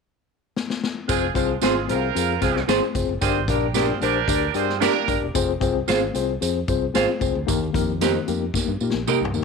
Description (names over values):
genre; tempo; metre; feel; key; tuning
uptempo 1960s-style soul; 113 BPM; 4/4; straight; F dorian; A4 = 440 Hz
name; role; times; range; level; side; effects
swinging big-band drum kit; drums; 0.6-9.4 s; hi-hat, kick drum, snare drum, toms; -27 LUFS; left 2 dB; none
clear horn section; second line; 1.1-5.2 s; F3 to D5; -24 LUFS; right 15 dB; slapback echo
mellow tine electric piano; accompaniment; 1.1-9.4 s; G2 to D5; -24 LUFS; left 11 dB; medium stereo tremolo
fingered electric bass; bass; 1.1-9.4 s; E1 to Bb2; -28 LUFS; right 2 dB; none
tambourine; percussion; 1.1-9.4 s; none; -33 LUFS; right 20 dB; none
semi-hollow electric guitar; stabs; 1.6-9.2 s; C4 to F5; -24 LUFS; right 15 dB; slapback echo
room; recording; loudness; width
moderate spring reverb, RT60 1.5 s; 1960s-style stereo with parts hard left and right; -20 LUFS; side -4 dB against mid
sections
0.0-1.1 A section; 1.1-9.4 B section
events
drum fill 0.6-1.1, 8.5-9.4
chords
0.0 N.C.; 1.1 Fm; 3.2 Gm; 5.3 Fm; 7.5 Eb